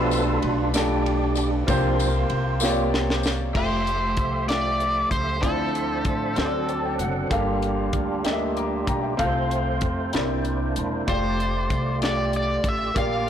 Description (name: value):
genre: slow gospel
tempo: 64 BPM (dotted quarters)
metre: 6/8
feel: straight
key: F major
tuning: A4 = 440 Hz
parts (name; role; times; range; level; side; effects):
- clear upright piano; accompaniment; 0.0-13.3 s; G2 to D6; -26 LUFS; left 1 dB; none
- percussive tonewheel organ; sustained chords; 0.0-13.3 s; F3 to F#5; -28 LUFS; right 3 dB; slow rotary speaker, overdrive, chorus vibrato
- upright bass; bass; 0.0-13.3 s; E1 to A2; -28 LUFS; left 1 dB; transformer saturation
- tight funk drum kit; drums; 0.1-13.1 s; crash cymbal, hi-hat, kick drum, ride cymbal, snare drum; -29 LUFS; equal; soft clipping on kick
- tambourine; percussion; 0.1-3.5 s; none; -33 LUFS; left 7 dB; none
- overdriven slide guitar; melody; 3.6-7.0, 11.1-13.3 s; A4 to F5; -26 LUFS; equal; none
room: light reverb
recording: blown-out, overdriven recording, overdrive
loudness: -21 LUFS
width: side -9 dB against mid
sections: 0.0-3.6 A section; 3.6-13.3 B section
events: tonewheel organ solo 0.0-3.6; drum fill 2.6-3.6; upright piano fill 6.4-7.3; tonewheel organ fill 6.4-7.3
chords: 0.0 G9/B; 1.7 C7sus4; 3.6 Fmaj9; 5.4 Dm9; 6.4 D7; 7.3 Gm9; 9.2 F/C; 10.1 C9; 11.1 F69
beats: 0.74 | 1.68 2.61 | 3.55 4.49 | 5.43 6.37 | 7.31 8.25 | 9.19 10.13 | 11.07 12.01 | 12.95